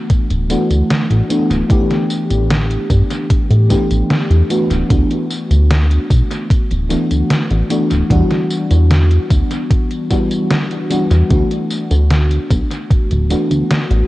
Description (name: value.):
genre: vaporwave.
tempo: 75 BPM.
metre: 4/4.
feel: straight.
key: D major.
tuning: A4 = 440 Hz.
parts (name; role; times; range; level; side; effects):
FM electric piano with soft pad layer; accompaniment; 0.0-14.1 s; E3 to G4; -17 LUFS; left 1 dB; tremolo, lush chorus, tape echo.
chorused synth bass; bass; 0.1-14.0 s; D1 to A2; -13 LUFS; equal; none.
detuned 8-bit digital drum machine; drums; 0.1-14.1 s; hi-hat, snare drum, tambourine; -21 LUFS; equal; tape echo.
electronic kick drum; drums; 0.1-13.1 s; none; -14 LUFS; equal; none.
room: light reverb, digital ambience.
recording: echo-heavy mix, cassette tape.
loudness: -12 LUFS.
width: side -18 dB against mid.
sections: 0.0-14.1 A section.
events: none.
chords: 0.0 D69; 1.7 A9sus4; 4.5 D69; 8.1 Em9; 11.3 D69.